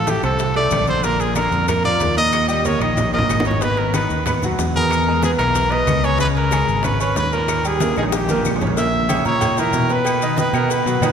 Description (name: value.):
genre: latin, salsa.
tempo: 186 BPM.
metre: 4/4.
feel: straight.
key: unclear.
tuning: A4 = 439 Hz.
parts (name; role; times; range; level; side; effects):
clear trumpet; melody; 0.0-11.1 s; G4 to E5; -20 LUFS; equal; none.
bright concert grand piano; accompaniment; 0.0-11.1 s; A2 to C#6; -22 LUFS; right 2 dB; none.
fingered electric bass; bass; 0.0-11.1 s; G#1 to B2; -22 LUFS; left 1 dB; none.
bongos and cowbell; percussion; 0.1-11.1 s; none; -31 LUFS; left 5 dB; none.
congas; percussion; 0.1-11.1 s; none; -27 LUFS; left 1 dB; none.
maracas; percussion; 0.1-11.1 s; none; -34 LUFS; left 6 dB; none.
timbales and agogo bells; percussion; 0.1-11.1 s; none; -29 LUFS; right 4 dB; none.
claves; percussion; 0.2-11.1 s; none; -35 LUFS; left 5 dB; none.
room: wet church reverb, RT60 2.7 s.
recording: recorded in a church or concert hall.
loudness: -16 LUFS.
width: side -7 dB against mid.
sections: 0.0-8.8 A section; 8.8-11.1 B section.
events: drum fill 2.7-3.6, 7.8-8.8.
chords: 0.0 F/A (rootless); 1.0 A#; 2.3 D#; 3.6 G#m7; 4.9 E6; 6.2 C#sus2; 7.5 D#; 8.8 A#dim; 10.1 B.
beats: 0.07 0.40 0.72 | 1.04 1.36 1.69 2.01 | 2.33 2.65 2.98 3.30 | 3.62 3.94 4.26 4.59 | 4.91 5.23 5.55 5.87 | 6.20 6.52 6.84 7.16 | 7.48 7.81 8.13 8.45 | 8.77 9.09 9.41 9.74 | 10.06 10.38 10.70 11.02.